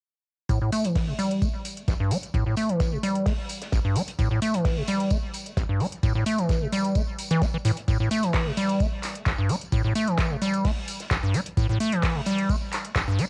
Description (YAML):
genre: acid house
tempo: 130 BPM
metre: 4/4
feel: straight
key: A minor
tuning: A4 = 439 Hz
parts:
  - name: acid bass, square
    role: riff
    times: 0.5-13.3 s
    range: A1 to C4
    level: -27 LUFS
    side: equal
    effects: tube saturation, cassette tape, analog delay
  - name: booming analog drum machine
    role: drums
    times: 0.5-13.3 s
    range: handclaps, hi-hat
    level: -36 LUFS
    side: equal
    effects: overdrive
  - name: cloth-damped thuddy drum kit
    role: drums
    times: 0.5-13.3 s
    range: hi-hat, snare drum, tambourine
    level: -40 LUFS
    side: equal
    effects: high-pass filter on hats, high-pass filter on snare, high-pass filter on perc, high-pass filter on room
  - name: electronic kick drum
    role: drums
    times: 0.5-13.1 s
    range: none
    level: -28 LUFS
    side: equal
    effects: overdrive
room: light reverb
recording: home recording on cassette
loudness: -25 LUFS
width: mono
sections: 0.5-13.3 A section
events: none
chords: none